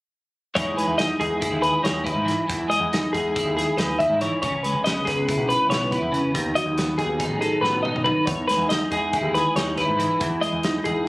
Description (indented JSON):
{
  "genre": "math rock and midwest emo",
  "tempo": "280 BPM (eighths)",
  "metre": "9/8",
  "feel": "straight",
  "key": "unclear",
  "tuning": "A4 = 443 Hz",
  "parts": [
    { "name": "twelve-string electric guitar", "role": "accompaniment", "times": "0.6-11.1 s", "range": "C#3 to B4", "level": "-25 LUFS", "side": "right 1 dB", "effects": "ensemble chorus" },
    { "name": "twelve-string electric guitar", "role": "arpeggios", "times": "0.6-11.1 s", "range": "G#4 to E5", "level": "-23 LUFS", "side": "left 1 dB", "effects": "none" },
    { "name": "growling picked electric bass", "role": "bass", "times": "0.6-11.1 s", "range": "A1 to G#2", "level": "-29 LUFS", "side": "equal", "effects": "overdrive" },
    { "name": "loose indie drum kit", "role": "drums", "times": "0.6-11.0 s", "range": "hi-hat, kick drum, snare drum, toms", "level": "-30 LUFS", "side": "equal", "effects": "none" }
  ],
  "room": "light reverb",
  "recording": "recorded on a phone in the room, club ambience",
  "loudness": "-20 LUFS",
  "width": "side -20 dB against mid",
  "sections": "0.6-11.1 A section",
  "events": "drum fill 7.6-8.3",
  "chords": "0.6 Emaj7; 4.4 C#m7; 6.3 B7/D#; 8.3 Emaj7"
}